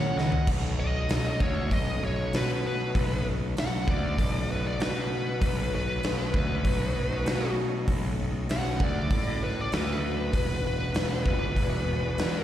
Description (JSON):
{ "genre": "blues rock power trio and southern rock", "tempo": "98 BPM", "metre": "4/4", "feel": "straight", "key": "B mixolydian", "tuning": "A4 = 440 Hz", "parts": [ { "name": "bluesy overdriven lead guitar", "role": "melody", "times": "0.0-12.4 s", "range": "B4 to F#5", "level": "-32 LUFS", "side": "left 1 dB", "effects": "distortion, slapback echo" }, { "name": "smooth overdriven lead guitar", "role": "second line", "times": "0.0-0.5 s", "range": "C#5 to D#5", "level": "-37 LUFS", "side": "right 4 dB", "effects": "slapback echo" }, { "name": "overdriven tonewheel organ", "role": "sustained chords", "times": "0.0-12.4 s", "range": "C#3 to G#4", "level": "-38 LUFS", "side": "right 3 dB", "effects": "slow rotary speaker, chorus vibrato" }, { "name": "distorted electric guitar", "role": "riff", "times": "0.0-0.5 s", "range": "F#2 to D#3", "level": "-29 LUFS", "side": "left 1 dB", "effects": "distortion" }, { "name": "fuzz picked electric bass", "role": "bass", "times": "0.0-12.4 s", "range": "E1 to B2", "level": "-29 LUFS", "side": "equal", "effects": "overdrive" }, { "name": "big rock drum kit", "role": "drums", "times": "0.2-12.3 s", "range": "crash cymbal, hi-hat, kick drum, snare drum, toms", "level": "-29 LUFS", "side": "equal", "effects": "none" } ], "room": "studio reverb", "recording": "live gig heard through the venue's PA, recital hall reverb", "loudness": "-25 LUFS", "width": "side -12 dB against mid", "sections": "0.5-12.4 A section", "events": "drum fill 0.2-0.5; lead electric guitar solo 0.5-12.4", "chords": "0.5 B7; 10.3 E7", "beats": "| 0.48 1.10 1.72 2.34 | 2.96 3.57 4.19 4.80 | 5.42 6.04 6.65 7.27 | 7.88 8.50 9.11 9.73 | 10.34 10.96 11.57 12.19" }